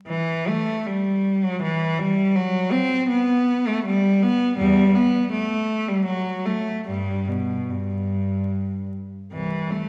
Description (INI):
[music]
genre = classical, baroque-style suite movement for unaccompanied cello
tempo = 71-82 BPM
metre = 3/4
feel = rubato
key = G major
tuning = A4 = 436 Hz
[part]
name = rich cello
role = solo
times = 0.1-9.9 s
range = C2 to C4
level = -22 LUFS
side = equal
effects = none
[sound]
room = wet scoring stage reverb, RT60 1.7 s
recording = heard from further back in the room, vinyl crackle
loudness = -22 LUFS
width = mono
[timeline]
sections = 0.0-9.3 A section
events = none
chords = none